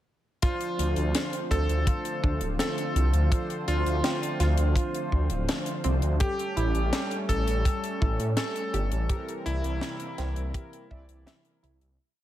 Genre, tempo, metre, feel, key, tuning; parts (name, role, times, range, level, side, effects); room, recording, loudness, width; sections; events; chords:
synthwave; 83 BPM; 4/4; straight; D minor; A4 = 441 Hz
bright electric grand piano; melody; 0.4-11.8 s; E4 to A4; -33 LUFS; equal; digital delay
warm analog pad; sustained chords; 0.4-12.0 s; C3 to F4; -37 LUFS; right 1 dB; chorus, sidechain pumping
analog pluck; arpeggios; 0.4-11.9 s; C4 to E5; -38 LUFS; right 4 dB; chorus, digital delay
analog synth brass; stabs; 0.4-11.6 s; E3 to D5; -36 LUFS; left 1 dB; chorus, cassette tape, digital delay
kick drum; drums; 0.4-11.1 s; -26 LUFS; equal
tight funk drum kit; drums; 0.4-12.0 s; hi-hat, snare drum; -33 LUFS; left 2 dB; gated reverb
wide detuned saw bass; bass; 0.8-12.0 s; D1 to A2; -26 LUFS; equal; chorus
studio reverb; -25 LUFS; side -13 dB against mid
0.4-12.0 verse
fade-out 8.1-12.0
0.4 Dm7; 6.2 A7; 9.1 C7